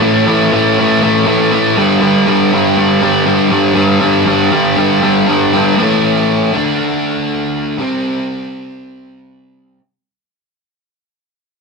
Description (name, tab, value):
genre	rock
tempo	120 BPM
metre	4/4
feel	straight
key	unclear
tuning	A4 = 440 Hz
part	biting overdriven guitar	solo	0.0-9.8 s	G2 to D4	-10 LUFS	equal	none
room	moderate small room reverb, RT60 0.5 s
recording	rough rehearsal-room recording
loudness	-10 LUFS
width	side -4 dB against mid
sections	0.0-5.8 A section; 5.8-9.8 B section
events	fade-out 5.8-9.8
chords	0.0 A5; 1.8 G5; 5.8 A5; 6.5 D5; 7.8 C5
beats	0.27 0.77 1.27 | 1.77 2.27 2.77 3.27 | 3.77 4.27 4.77 5.27 | 5.77 6.27 6.78 7.28 | 7.78 8.29 8.79 9.29